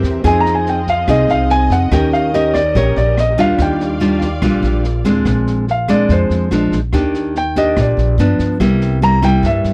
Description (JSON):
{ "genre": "bossa nova", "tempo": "144 BPM", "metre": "4/4", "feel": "straight", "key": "Eb major", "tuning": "A4 = 440 Hz", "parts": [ { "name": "nylon-string guitar", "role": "accompaniment", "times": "0.0-9.7 s", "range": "G2 to Bb4", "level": "-18 LUFS", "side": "equal", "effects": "none" }, { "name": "dark symphonic string section", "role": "sustained chords", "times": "0.0-5.2 s", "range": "C4 to F5", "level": "-30 LUFS", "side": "equal", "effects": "none" }, { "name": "upright bass", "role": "bass", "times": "0.0-9.7 s", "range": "Bb1 to G2", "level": "-20 LUFS", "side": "equal", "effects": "none" }, { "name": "open jazz drum kit", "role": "drums", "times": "0.0-9.7 s", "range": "kick drum, rim click, snare drum", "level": "-26 LUFS", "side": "equal", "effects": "none" }, { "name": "warm grand piano", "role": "melody", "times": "0.3-9.7 s", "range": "C5 to Bb5", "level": "-19 LUFS", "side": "equal", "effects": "none" } ], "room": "little or no reverb", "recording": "dry, close 1970s-style studio recording", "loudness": "-15 LUFS", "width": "mono", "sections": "0.0-5.3 A section; 5.3-9.7 A section", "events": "grand piano solo 0.0-5.3, 5.3-9.7", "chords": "0.2 Fm7; 1.9 Eb7; 3.6 Ebmaj9; 5.3 Bb9; 6.5 Bb7; 6.9 Ebmaj7; 8.2 G7; 8.6 C7" }